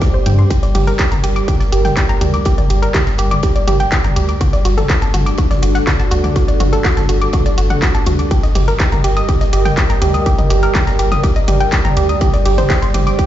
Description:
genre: melodic techno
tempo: 123 BPM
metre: 4/4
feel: straight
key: G harmonic minor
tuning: A4 = 440 Hz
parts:
  - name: dark analog pad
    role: sustained chords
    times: 0.0-13.3 s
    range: G3 to Eb5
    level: -21 LUFS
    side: right 1 dB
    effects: chorus, sidechain pumping
  - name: woody wave-folded pluck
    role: arpeggios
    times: 0.0-13.3 s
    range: F#4 to Eb6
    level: -20 LUFS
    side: right 1 dB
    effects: chorus, sidechain pumping, tape echo
  - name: electronic kick drum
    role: drums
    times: 0.0-13.3 s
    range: none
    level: -16 LUFS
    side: equal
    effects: distortion
  - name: swinging big-band drum kit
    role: drums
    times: 0.0-13.3 s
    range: hi-hat, ride cymbal, snare drum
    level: -33 LUFS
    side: left 2 dB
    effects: sidechain pumping on cymbals, high-pass filter on cymbals, sidechain pumping on hats, high-pass filter on hats, high-pass filter on snare, high-pass filter on room
  - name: round analog bass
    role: bass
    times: 0.3-13.1 s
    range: G1 to G2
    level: -16 LUFS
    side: equal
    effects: sidechain pumping
  - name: techno drum kit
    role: drums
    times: 0.3-13.3 s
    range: handclaps, hi-hat, toms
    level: -21 LUFS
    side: equal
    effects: none
room: little or no reverb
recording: played on a big sound system in a bare room, large studio reverb, nothing above 7.7 kHz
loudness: -12 LUFS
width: side -12 dB against mid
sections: 0.0-13.3 A section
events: none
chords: 0.0 Csus2/G; 0.5 Gm; 4.4 D/G; 8.3 Eb/G; 12.2 Csus2/G

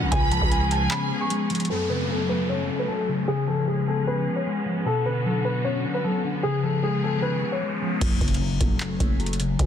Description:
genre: hip hop, trap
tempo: 152 BPM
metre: 4/4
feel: half-time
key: F# harmonic minor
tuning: A4 = 436 Hz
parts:
  - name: warm symphonic violin section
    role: second line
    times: 0.0-1.3 s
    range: F#5 to B5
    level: -32 LUFS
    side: right 2 dB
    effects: ping-pong delay
  - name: mellow electric guitar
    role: accompaniment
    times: 0.0-9.7 s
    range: F#2 to C#4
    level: -26 LUFS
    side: left 2 dB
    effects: phaser, low-pass filter
  - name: warm symphonic string section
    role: sustained chords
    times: 0.0-8.0 s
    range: D3 to A4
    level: -32 LUFS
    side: equal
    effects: low-pass filter
  - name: growling 808-style bass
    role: bass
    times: 0.0-0.9, 8.0-9.7 s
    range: F#1 to C#2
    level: -27 LUFS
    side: equal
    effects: none
  - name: dark grand piano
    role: melody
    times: 0.1-8.0 s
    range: G#4 to C#6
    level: -28 LUFS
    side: equal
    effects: low-pass filter, ping-pong delay
  - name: booming analog drum machine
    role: drums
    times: 0.1-1.7, 8.0-9.7 s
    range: crash cymbal, handclaps, hi-hat, kick drum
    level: -25 LUFS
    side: equal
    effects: none
  - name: downlifter, riser and impact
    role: sound effects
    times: 1.7-9.6 s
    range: none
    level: -34 LUFS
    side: right 1 dB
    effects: none
room: digital ambience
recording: dense, heavily limited modern master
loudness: -22 LUFS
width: side -9 dB against mid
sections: 0.0-1.7 A section; 1.7-8.0 B section; 8.0-9.7 C section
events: break 0.9-1.7; filter sweep 1.7-8.0; riser 6.1-8.0; impact 8.0-9.6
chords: 0.1 C#7; 1.7 F#m; 3.3 C#7; 4.9 Bmadd9; 6.4 C#7; 8.0 F#m

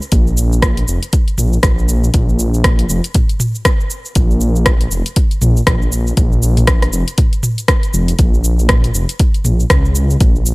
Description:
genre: afro house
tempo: 119 BPM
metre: 4/4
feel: swing 59% on 16ths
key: unclear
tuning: A4 = 436 Hz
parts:
  - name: afro-pop drum kit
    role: drums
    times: 0.0-10.5 s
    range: hi-hat, rim click, shaker, toms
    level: -18 LUFS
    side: equal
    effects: none
  - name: dark detuned saw bass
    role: bass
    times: 0.1-10.5 s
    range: F1 to Db2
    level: -14 LUFS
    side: equal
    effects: sidechain pumping
  - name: electronic kick drum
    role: drums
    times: 0.1-10.3 s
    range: none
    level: -14 LUFS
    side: equal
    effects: none
room: little or no reverb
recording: dry, gritty hardware recording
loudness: -11 LUFS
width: side -24 dB against mid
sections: 0.0-10.5 A section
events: none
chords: none

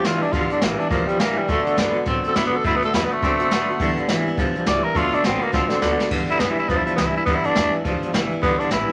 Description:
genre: rockabilly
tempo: 208 BPM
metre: 4/4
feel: swing 59% on 8ths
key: G major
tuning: A4 = 440 Hz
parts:
  - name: growling tenor saxophone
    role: melody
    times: 0.0-8.9 s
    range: D3 to D5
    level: -24 LUFS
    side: equal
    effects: none
  - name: picked steel-string acoustic guitar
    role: accompaniment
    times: 0.0-8.9 s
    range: G2 to F#4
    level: -30 LUFS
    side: equal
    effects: none
  - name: twangy electric guitar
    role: riff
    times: 0.0-8.9 s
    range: G2 to C4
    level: -26 LUFS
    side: equal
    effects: tremolo
  - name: upright bass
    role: bass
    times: 0.0-8.9 s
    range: E1 to A2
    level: -36 LUFS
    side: equal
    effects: none
  - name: jazz brush drum kit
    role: drums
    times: 0.0-8.8 s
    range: crash cymbal, hi-hat, kick drum, snare drum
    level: -27 LUFS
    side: equal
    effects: none
room: moderate small room reverb, RT60 0.5 s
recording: none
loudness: -21 LUFS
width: mono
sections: 0.0-6.1 A section; 6.1-8.9 A section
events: drum fill 5.5-6.1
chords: 0.0 G6; 1.5 D6; 3.8 G6; 5.0 D6; 6.1 G6

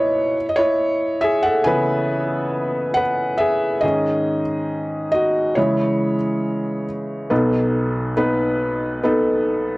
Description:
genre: pop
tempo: 69 BPM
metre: 4/4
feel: straight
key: C# minor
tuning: A4 = 441 Hz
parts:
  - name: felt-muted upright piano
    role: solo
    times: 0.0-9.8 s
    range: B1 to G#5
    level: -18 LUFS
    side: equal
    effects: none
room: light reverb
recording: dry, close 1970s-style studio recording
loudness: -18 LUFS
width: side -22 dB against mid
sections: 0.0-7.3 A section; 7.3-9.8 B section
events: felt piano solo 0.0-7.3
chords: 0.4 C#m7; 3.8 G#sus4; 5.6 C#m; 7.3 B7

